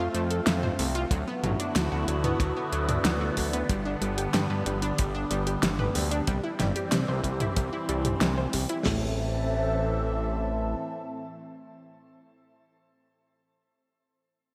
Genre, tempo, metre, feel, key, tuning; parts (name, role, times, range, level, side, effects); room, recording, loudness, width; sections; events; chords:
synthwave; 93 BPM; 4/4; straight; A minor; A4 = 441 Hz
phased analog pad; sustained chords; 0.0-12.2 s; A2 to E5; -34 LUFS; equal; phaser, chorus, sidechain pumping, shimmer reverb
analog pluck; arpeggios; 0.0-9.2 s; F#3 to C5; -35 LUFS; equal; chorus, delay, shimmer reverb
fat analog bass; bass; 0.0-10.8 s; G1 to G2; -32 LUFS; equal
pop drum kit; drums; 0.1-8.8 s; hi-hat, snare drum, toms; -32 LUFS; equal; overdrive, gated reverb
warm soul drum kit; drums; 1.1-9.0 s; hi-hat, kick drum, snare drum, toms; -32 LUFS; equal; gated reverb
moderate lush hall reverb, RT60 2.8 s; bright 1980s-style digital production; -28 LUFS; mono
0.0-8.9 A section; 8.9-11.4 B section
0.0 F; 1.1 D6; 3.7 G; 6.3 C; 8.9 Am